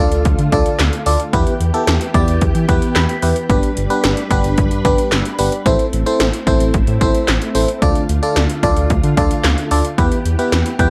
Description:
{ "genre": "synth-pop", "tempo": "111 BPM", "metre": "4/4", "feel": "straight", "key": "A minor", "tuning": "A4 = 440 Hz", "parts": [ { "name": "FM electric piano", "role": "accompaniment", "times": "0.0-10.9 s", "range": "B3 to B5", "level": "-21 LUFS", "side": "equal", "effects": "chorus, phaser" }, { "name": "ensemble organ-string", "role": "sustained chords", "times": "0.0-10.9 s", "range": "D3 to B4", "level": "-26 LUFS", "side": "equal", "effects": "ensemble chorus" }, { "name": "smooth synth bass", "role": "bass", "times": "0.0-10.9 s", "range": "G1 to E3", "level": "-20 LUFS", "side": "equal", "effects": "none" }, { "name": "80s electronic pad drums", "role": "drums", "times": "0.1-10.9 s", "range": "handclaps, hi-hat, kick drum, snare drum", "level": "-20 LUFS", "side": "equal", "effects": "overdrive" } ], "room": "light reverb, digital ambience", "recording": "none", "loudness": "-16 LUFS", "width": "mono", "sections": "0.0-10.9 A section", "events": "FM electric piano fill 2.7-3.5, 10.5-10.9", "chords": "0.0 Dm; 1.3 Em; 3.5 G; 5.7 Am; 7.8 Dm; 10.0 Em" }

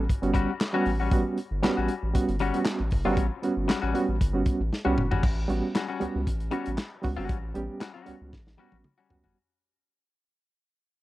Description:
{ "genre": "funk", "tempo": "116 BPM", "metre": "4/4", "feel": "straight", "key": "A mixolydian", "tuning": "A4 = 440 Hz", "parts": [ { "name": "reed electric piano", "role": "stabs", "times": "0.0-9.4 s", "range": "G3 to G4", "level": "-28 LUFS", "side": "right 3 dB", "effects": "fast tremolo" }, { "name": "round analog bass", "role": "bass", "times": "0.0-9.4 s", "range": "F#1 to C#2", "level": "-30 LUFS", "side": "equal", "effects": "none" }, { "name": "crunchy breakbeat drum kit", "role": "drums", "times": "0.1-9.4 s", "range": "crash cymbal, handclaps, hi-hat, kick drum, snare drum, toms", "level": "-28 LUFS", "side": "equal", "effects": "none" }, { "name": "semi-hollow electric guitar", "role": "accompaniment", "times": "0.3-9.4 s", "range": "G3 to F#4", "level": "-32 LUFS", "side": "left 6 dB", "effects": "spring reverb" } ], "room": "little or no reverb", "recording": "dry, close 1970s-style studio recording", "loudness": "-24 LUFS", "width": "side -16 dB against mid", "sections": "0.0-5.2 A section; 5.2-9.4 B section", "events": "drum fill 4.7-5.2, 8.3-9.4; fade-out 5.2-9.4", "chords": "0.0 A13" }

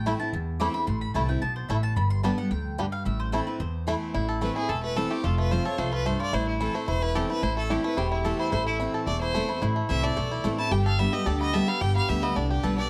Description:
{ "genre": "bluegrass", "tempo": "219 BPM", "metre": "4/4", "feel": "straight", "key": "A minor", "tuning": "A4 = 436 Hz", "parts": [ { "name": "picked steel-string acoustic guitar", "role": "accompaniment", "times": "0.0-12.9 s", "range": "E2 to G4", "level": "-33 LUFS", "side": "equal", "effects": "none" }, { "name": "mandolin", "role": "stabs", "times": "0.0-4.0 s", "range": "A4 to D6", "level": "-37 LUFS", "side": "equal", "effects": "none" }, { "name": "upright bass", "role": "bass", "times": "0.0-12.9 s", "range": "E1 to E2", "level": "-31 LUFS", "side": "equal", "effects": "none" }, { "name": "bluegrass banjo", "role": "arpeggios", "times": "0.1-12.9 s", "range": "A3 to A4", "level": "-33 LUFS", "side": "equal", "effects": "none" }, { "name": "lap resonator guitar", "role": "second line", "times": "4.1-12.7 s", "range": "E4 to A4", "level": "-38 LUFS", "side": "equal", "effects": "none" }, { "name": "clear fiddle", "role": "melody", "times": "4.4-12.9 s", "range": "E4 to A5", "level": "-33 LUFS", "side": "equal", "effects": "none" } ], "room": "light reverb", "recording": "dark, warm production", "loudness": "-27 LUFS", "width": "mono", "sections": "0.0-4.1 A section; 4.1-12.9 B section", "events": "mandolin solo 0.0-4.1", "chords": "0.0 Am; 2.0 G; 3.1 Am; 5.2 F; 6.3 Am; 10.7 G" }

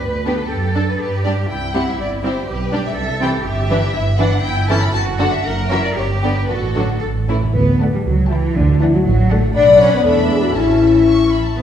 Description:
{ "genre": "quick classical-period movement for symphony orchestra", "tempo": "120 BPM", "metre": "2/4", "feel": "rubato", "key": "G major, D major from 3.5 s", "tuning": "A4 = 440 Hz", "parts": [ { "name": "warm studio violin section", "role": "melody", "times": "0.0-11.6 s", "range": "G4 to C#6", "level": "-25 LUFS", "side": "left 2 dB", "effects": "none" }, { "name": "rich studio cello section", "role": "bass", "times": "0.0-11.6 s", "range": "D3 to B4", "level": "-23 LUFS", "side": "right 2 dB", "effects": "none" }, { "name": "warm studio double bass section", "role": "bass", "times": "0.0-11.6 s", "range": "F#1 to G2", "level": "-19 LUFS", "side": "right 2 dB", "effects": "none" }, { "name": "rich studio violin section", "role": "second line", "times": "0.3-11.4 s", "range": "C#4 to G5", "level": "-27 LUFS", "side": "left 3 dB", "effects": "none" }, { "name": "rich studio viola section", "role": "accompaniment", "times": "0.3-11.4 s", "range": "D3 to E4", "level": "-24 LUFS", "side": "right 2 dB", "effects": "none" }, { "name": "timpani", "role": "percussion", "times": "6.5-9.3 s", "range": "A2 to D3", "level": "-22 LUFS", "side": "right 1 dB", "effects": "none" }, { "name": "dark French horn section", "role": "sustained chords", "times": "7.5-11.6 s", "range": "D4 to D5", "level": "-14 LUFS", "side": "left 4 dB", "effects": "none" } ], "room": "wet scoring stage reverb, RT60 1.6 s", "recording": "heard from further back in the room", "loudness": "-14 LUFS", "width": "side -9 dB against mid", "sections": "0.0-7.6 A section; 7.6-11.6 B section", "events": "timpani fill 7.0-7.6", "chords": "0.0 G; 0.5 D/F#; 1.0 G; 1.5 C; 2.5 G/B; 3.0 C; 3.5 Em7/G; 4.4 A7/G; 4.9 D/F#; 5.4 F#7; 6.0 G; 6.5 D/A; 7.0 A; 7.6 D; 8.1 A7/C#; 8.6 D; 9.6 Bm; 10.0 E7; 10.5 A" }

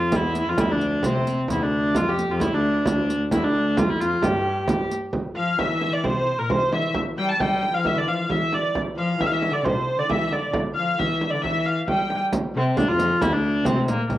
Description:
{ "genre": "medieval dance", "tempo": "133 BPM", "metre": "2/4", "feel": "straight", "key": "unclear", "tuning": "A4 = 436 Hz", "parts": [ { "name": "rich hurdy-gurdy", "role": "melody", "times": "0.0-14.1 s", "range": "Bb3 to A5", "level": "-23 LUFS", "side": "equal", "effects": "cassette tape" }, { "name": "rich viola da gamba", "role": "second line", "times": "0.0-14.1 s", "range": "D2 to G3", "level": "-26 LUFS", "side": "left 2 dB", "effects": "cassette tape" }, { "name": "frame drum", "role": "percussion", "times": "0.1-14.2 s", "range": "none", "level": "-26 LUFS", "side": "right 2 dB", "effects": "none" }, { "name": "riq", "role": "percussion", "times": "0.1-5.1, 12.3-14.2 s", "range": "none", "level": "-30 LUFS", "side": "right 2 dB", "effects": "none" } ], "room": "moderate spring reverb, RT60 1.1 s, small room ambience", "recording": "home recording on cassette", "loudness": "-20 LUFS", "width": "side -14 dB against mid", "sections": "0.0-5.1 A section; 5.1-12.3 B section; 12.3-14.2 C section", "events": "speeding up 0.0-14.2", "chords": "none" }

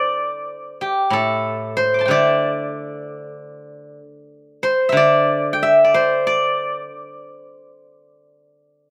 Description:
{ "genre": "chinese traditional, Chinese solo plucked strings", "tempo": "93 BPM", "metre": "4/4", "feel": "rubato", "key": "D shang mode", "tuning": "A4 = 441 Hz", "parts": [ { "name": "steel-string zither", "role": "solo", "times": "0.0-8.9 s", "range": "A2 to D6", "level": "-19 LUFS", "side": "equal", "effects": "none" } ], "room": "little or no reverb", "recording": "recorded outdoors, with no room sound", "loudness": "-18 LUFS", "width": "mono", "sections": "0.0-8.9 A section", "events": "none", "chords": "none" }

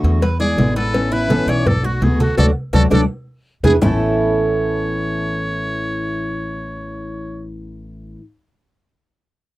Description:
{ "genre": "latin, Cuban son and guajira", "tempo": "167 BPM", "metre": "4/4", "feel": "straight", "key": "A major", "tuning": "A4 = 439 Hz", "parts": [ { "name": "picked steel-string acoustic guitar", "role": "accompaniment", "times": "0.0-8.2 s", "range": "A2 to F#4", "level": "-22 LUFS", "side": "left 2 dB", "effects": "none" }, { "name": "Cuban tres", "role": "arpeggios", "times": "0.0-8.2 s", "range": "A3 to D5", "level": "-22 LUFS", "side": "right 3 dB", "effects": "none" }, { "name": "upright bass", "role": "bass", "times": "0.0-8.1 s", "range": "A1 to E2", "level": "-21 LUFS", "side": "equal", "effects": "none" }, { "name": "cowbell and bongos", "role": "percussion", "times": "0.0-3.9 s", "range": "none", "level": "-26 LUFS", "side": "left 3 dB", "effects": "none" }, { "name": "congas", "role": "percussion", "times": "0.2-3.9 s", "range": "none", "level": "-20 LUFS", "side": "right 1 dB", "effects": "none" }, { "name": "trumpet with metal mute", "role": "melody", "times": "0.4-7.5 s", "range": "F#4 to C#5", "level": "-25 LUFS", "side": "equal", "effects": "none" } ], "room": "light reverb", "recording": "dry, close 1970s-style studio recording", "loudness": "-15 LUFS", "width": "side -17 dB against mid", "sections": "0.0-3.8 A section; 3.8-6.7 B section", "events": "band accent 2.4-3.8; drum fill 3.3-3.8", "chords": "0.2 E7; 0.9 Aadd9; 1.7 Bm7; 2.4 D; 3.1 E7; 3.8 Aadd9" }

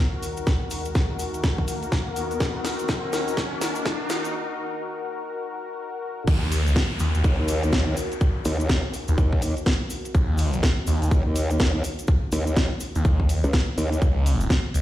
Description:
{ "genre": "bass house", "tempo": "124 BPM", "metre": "4/4", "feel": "swing 61% on 16ths", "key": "Eb minor", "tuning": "A4 = 441 Hz", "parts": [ { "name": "sweeping resonant pad", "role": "sustained chords", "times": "0.0-14.8 s", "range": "Eb2 to Bb4", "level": "-32 LUFS", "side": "left 2 dB", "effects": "chorus, sidechain pumping" }, { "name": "riser and downlifter", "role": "sound effects", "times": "0.1-10.1 s", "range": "none", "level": "-34 LUFS", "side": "equal", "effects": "none" }, { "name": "garage drum kit", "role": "drums", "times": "0.2-14.8 s", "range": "crash cymbal, hi-hat, snare drum", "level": "-29 LUFS", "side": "equal", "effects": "none" }, { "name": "cabasa", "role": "percussion", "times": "0.2-14.8 s", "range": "none", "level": "-40 LUFS", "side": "left 2 dB", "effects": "none" }, { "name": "electronic kick drum", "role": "drums", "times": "0.5-14.6 s", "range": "none", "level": "-21 LUFS", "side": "equal", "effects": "none" }, { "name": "phased detuned saw bass", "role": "bass", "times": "6.3-14.8 s", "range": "Db2 to Eb2", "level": "-21 LUFS", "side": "equal", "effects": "phaser, overdrive, sidechain pumping" }, { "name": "growl bass", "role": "bass", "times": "7.2-14.0 s", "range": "Db2 to Eb2", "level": "-23 LUFS", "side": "equal", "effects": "chorus, tube saturation, sidechain pumping" } ], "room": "little or no reverb", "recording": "played on a big sound system in a bare room, stone room reverb, high-pass filter", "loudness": "-21 LUFS", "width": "side -14 dB against mid", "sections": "0.0-6.3 A section; 6.3-14.8 B section", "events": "build-up 0.0-6.3; drum fill 0.0-4.3; filter sweep 0.0-6.3; riser 0.1-4.3; break 4.3-6.3; drop 6.3-14.8", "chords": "0.0 Ebm; 14.0 Db" }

